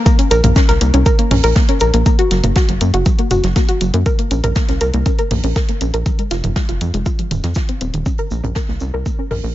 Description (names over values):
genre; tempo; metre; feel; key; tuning
melodic techno; 120 BPM; 4/4; straight; Bb minor; A4 = 440 Hz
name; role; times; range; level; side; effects
soft round pluck; arpeggios; 0.1-9.5 s; Eb3 to Bb4; -19 LUFS; left 1 dB; chorus, sidechain pumping, ping-pong delay
deep house drum kit; drums; 0.1-9.4 s; hi-hat, toms; -21 LUFS; right 1 dB; none
electronic kick drum; drums; 0.1-9.2 s; none; -15 LUFS; equal; none
swinging big-band drum kit; drums; 0.1-9.4 s; hi-hat, shaker, snare drum; -30 LUFS; right 2 dB; sidechain pumping on hats, high-pass filter on hats, high-pass filter on snare, sidechain pumping on perc, high-pass filter on perc, high-pass filter on room
tight sequencer bass; bass; 0.3-9.5 s; Eb1 to Gb2; -17 LUFS; equal; sidechain pumping
room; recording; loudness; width
small room ambience; nothing above 7.6 kHz; -13 LUFS; side -14 dB against mid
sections
0.1-9.5 A section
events
fade-out 0.1-9.5; filter sweep on synth arpeggio sound 0.1-9.5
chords
0.1 Bbm; 2.1 Gb; 4.1 Bbm; 6.1 Fm7; 8.1 Bbm